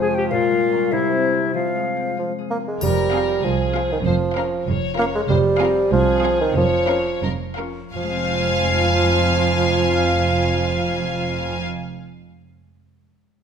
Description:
cinematic, playful, whimsical film cue; 82-99 BPM; 2/4; straight; F minor; A4 = 440 Hz
mellow clarinet; second line; 0.0-2.2 s; E4 to Ab4; -22 LUFS; left 6 dB
silver concert flute; second line; 0.0-2.2 s; E5 to Ab5; -26 LUFS; left 1 dB
mellow bassoon; accompaniment; 0.0-11.6 s; Bb2 to Bb3; -22 LUFS; right 2 dB
concert harp; arpeggios; 0.0-12.1 s; F2 to Db5; -28 LUFS; left 6 dB
rich studio violin section; melody; 2.8-11.6 s; Ab4 to Ab5; -28 LUFS; left 4 dB
dark studio cello section; bass; 2.8-11.6 s; C2 to F2; -26 LUFS; right 3 dB
rich studio double bass section; bass; 2.8-11.6 s; F1 to C2; -25 LUFS; right 4 dB
triangle; percussion; 2.8-4.0 s; -37 LUFS; left 3 dB
clear studio violin section; second line; 3.1-11.6 s; Ab4 to F5; -25 LUFS; left 2 dB
dark studio viola section; accompaniment; 3.1-11.6 s; C4 to F4; -30 LUFS; equal
moderate scoring stage reverb, RT60 1.4 s; -17 LUFS; side -7 dB against mid
0.0-2.8 A section; 2.8-8.0 B section; 8.0-10.9 C section
slowing down 4.7-8.0
0.3 Gm7b5/Bb; 0.9 C; 1.5 Fm; 4.1 Bbm/F; 5.3 Fm; 6.6 Bbm/F; 8.0 Fm

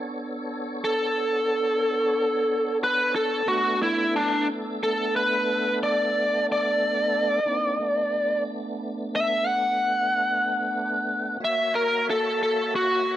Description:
blues; 60 BPM (dotted quarters); 12/8; straight; B minor; A4 = 440 Hz
tonewheel organ; sustained chords; 0.0-13.2 s; A3 to E5; -30 LUFS; right 1 dB; slow rotary speaker, overdrive, chorus vibrato
biting lead guitar; melody; 0.8-13.2 s; D4 to F#5; -22 LUFS; equal; overdrive
light reverb, digital ambience; -22 LUFS; side -12 dB against mid
0.0-13.2 A section
lead electric guitar solo 0.0-13.2
0.0 Bm9; 11.4 F#7#9

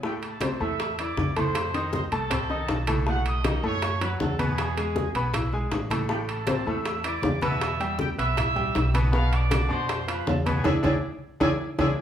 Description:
latin, salsa; 158 BPM; 4/4; straight; A minor; A4 = 440 Hz
bright trumpet section; melody; 0.0-11.9 s; F#4 to E6; -31 LUFS; right 2 dB
bright upright piano; accompaniment; 0.0-11.9 s; A2 to B5; -29 LUFS; left 1 dB
bongos; percussion; 0.0-11.9 s; -32 LUFS; left 3 dB
congas; percussion; 0.0-11.9 s; -32 LUFS; left 1 dB
timbales; percussion; 0.2-11.9 s; -31 LUFS; right 3 dB
upright bass; bass; 0.6-11.9 s; A1 to F#2; -29 LUFS; equal
wet large studio reverb, RT60 0.8 s; band playing live in one room; -23 LUFS; side -10 dB against mid
0.0-12.0 A section
band accent 10.6-12.0; drum fill 11.4-12.0
0.0 Am; 1.5 F7; 3.1 B7; 4.6 E; 6.1 Am; 7.6 Em; 9.1 Bdim; 10.6 E7

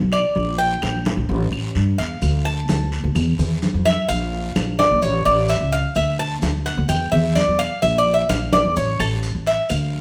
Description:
latin, Cuban son and guajira; 128 BPM; 4/4; straight; A4 = 441 Hz
upright bass; bass; 0.0-10.0 s; A1 to G2; -24 LUFS; equal
Cuban tres; arpeggios; 0.1-10.0 s; A4 to A5; -22 LUFS; equal
claves; percussion; 0.1-9.9 s; -36 LUFS; equal
guiro; percussion; 0.1-10.0 s; -38 LUFS; equal
congas; percussion; 0.4-10.0 s; -27 LUFS; equal
maracas; percussion; 2.2-9.9 s; -41 LUFS; equal
moderate stone room reverb, RT60 1.1 s; band playing live in one room; -20 LUFS; mono
0.0-10.0 A section
Cuban tres solo 0.0-10.0
0.4 Bb6; 1.3 A5; 2.2 D5; 3.2 N.C.; 4.1 Bb5; 5.0 A; 6.0 Dadd9; 6.9 Em7; 7.8 Bb; 8.8 A

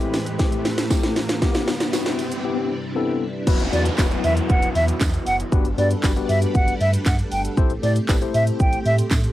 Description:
dance-pop; 117 BPM; 4/4; straight; E minor; A4 = 439 Hz
tine electric piano; accompaniment; 0.0-8.8 s; F#3 to D5; -26 LUFS; left 7 dB; medium stereo tremolo
string machine, full ensemble; sustained chords; 0.0-9.3 s; A2 to F#5; -29 LUFS; right 1 dB; ensemble chorus, sidechain pumping
house drum kit; drums; 0.0-9.3 s; crash cymbal, handclaps, hi-hat, kick drum, shaker, snare drum; -21 LUFS; right 1 dB; cassette tape
riser and downlifter; sound effects; 0.0-7.6 s; -30 LUFS; equal
tambourine; percussion; 0.9-9.2 s; -36 LUFS; right 10 dB
sub bass with octave; bass; 3.5-9.3 s; E1 to A2; -23 LUFS; equal; sidechain pumping
hollow silver concert flute; melody; 3.7-9.0 s; D5 to G5; -22 LUFS; right 1 dB; sidechain pumping, cassette tape
moderate booth ambience, RT60 0.2 s; home recording on cassette; -18 LUFS; side -14 dB against mid
0.0-3.5 A section; 3.5-9.3 B section
build-up 0.0-3.5; drum fill 0.0-2.4; riser 0.0-3.5; break 2.4-3.5; drop 3.5-9.3
0.0 Am7; 1.4 Cmaj7; 3.5 Esus2; 5.5 Gmaj7; 7.6 Am7

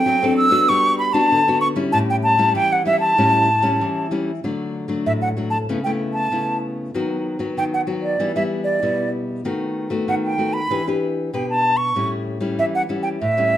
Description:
samba; 96 BPM; 4/4; straight; A4 = 440 Hz
silver concert flute; melody; 0.0-13.6 s; D5 to E6; -18 LUFS; right 1 dB
nylon-string guitar; accompaniment; 0.0-13.6 s; A2 to B4; -22 LUFS; left 2 dB
moderate large studio reverb, RT60 0.8 s; lossy compression artefacts; -17 LUFS; side -12 dB against mid
0.0-4.4 A section; 4.4-13.6 B section
0.0 D7/F#; 0.7 Gmaj7; 1.9 A7; 4.4 D; 5.7 Aadd9/C#; 6.9 B/D#; 8.2 Em; 9.5 B7/D#; 10.7 Em7; 12.0 A7

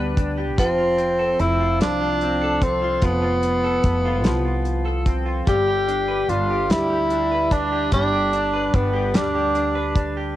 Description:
six-eight pop ballad; 49 BPM (dotted quarters); 6/8; straight; A4 = 440 Hz
warm tenor saxophone; melody; 0.0-10.1 s; B3 to G4; -21 LUFS; equal; cassette tape, analog delay
direct-recorded clean electric guitar; accompaniment; 0.0-10.4 s; F3 to B4; -26 LUFS; equal; double-tracked left and right, cassette tape
upright bass; bass; 0.0-10.3 s; F1 to D2; -26 LUFS; equal; transformer saturation
damped 70s drum kit; drums; 0.2-10.1 s; hi-hat, kick drum, snare drum; -21 LUFS; equal; cassette tape
studio reverb; home recording on cassette; -18 LUFS; side -14 dB against mid
0.0-10.4 A section
0.0 G; 0.6 F; 5.5 G

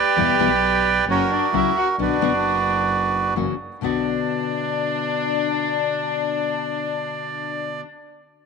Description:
tango; 132 BPM; 4/4; rubato; B minor; A4 = 442 Hz
bandoneon; melody; 0.0-7.8 s; F#4 to G5; -22 LUFS; right 6 dB
warm studio violin section; second line; 0.0-7.8 s; C#4 to G4; -26 LUFS; left 10 dB
nylon-string guitar; accompaniment; 0.2-7.9 s; B2 to F#4; -26 LUFS; left 11 dB
warm double bass; bass; 0.2-4.0 s; F#1 to E2; -28 LUFS; right 4 dB
wet spring reverb, RT60 2.5 s; 1960s-style stereo with parts hard left and right; -19 LUFS; side -5 dB against mid
0.0-3.8 A section; 3.8-7.5 B section
0.2 Em; 1.1 F#; 2.0 Bm; 3.4 F#7; 3.8 Bm

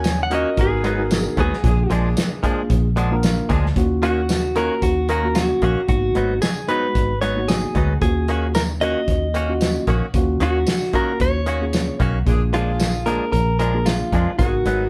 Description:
straight-eighth soul blues; 113 BPM; 4/4; swing 56% on 16ths; Eb minor; A4 = 440 Hz
direct-recorded clean electric guitar; melody; 0.0-14.9 s; F4 to Ab5; -25 LUFS; equal
tine electric piano; accompaniment; 0.0-14.9 s; Ab3 to Gb5; -28 LUFS; equal; overdrive
clear horn section; sustained chords; 0.0-3.6, 12.3-14.9 s; Eb3 to Ab4; -36 LUFS; equal
vintage muted fingered electric bass; bass; 0.0-14.9 s; Ab1 to F2; -24 LUFS; equal
warm soul drum kit; drums; 0.0-14.8 s; hi-hat, kick drum, snare drum, tambourine; -24 LUFS; equal
direct-recorded clean electric guitar; stabs; 0.3-14.8 s; Ab2 to Gb4; -28 LUFS; equal
moderate studio reverb, RT60 0.7 s; band playing live in one room; -20 LUFS; mono
0.0-3.8 A section; 3.8-14.9 B section
clean electric guitar solo 0.0-3.8; tine electric piano fill 2.7-3.8
0.0 Ebm7; 0.6 Abm7; 1.6 Bb7; 3.8 Ebm7; 5.9 Abm7; 8.0 Ebm7; 12.3 Bb7; 14.4 Abm7

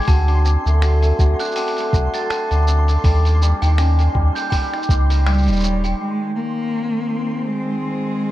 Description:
folktronica; 81 BPM; 4/4; swing 56% on 16ths; A4 = 440 Hz
glockenspiel with hard plastic mallets; second line; 0.0-6.0 s; G5 to A6; -28 LUFS; right 2 dB; ping-pong delay
hammered dulcimer; arpeggios; 0.0-8.3 s; F#3 to Db5; -24 LUFS; left 1 dB; ping-pong delay
lo-fi sampler-style drum kit; drums; 0.0-6.0 s; finger snaps, hi-hat, shaker; -30 LUFS; right 1 dB; studio reverb
flickering grainy texture; texture; 0.0-8.3 s; C6; -36 LUFS; right 1 dB; built-in reverb
warm sub bass; bass; 0.1-5.9 s; Eb1 to Eb2; -15 LUFS; equal
electronic kick drum; drums; 0.1-5.1 s; -18 LUFS; equal; studio reverb
rich cello; melody; 5.3-8.3 s; G3 to Bb3; -22 LUFS; equal
warm string quartet; sustained chords; 6.0-8.3 s; Eb3 to C5; -26 LUFS; equal; vintage 12-bit sampler grit
light reverb; dark, warm production; -16 LUFS; side -15 dB against mid
0.0-6.0 A section; 6.0-8.3 B section
kick drops out 5.3-6.0; band accent 5.3-5.6
0.1 D7; 3.0 Eb7; 6.0 Ab

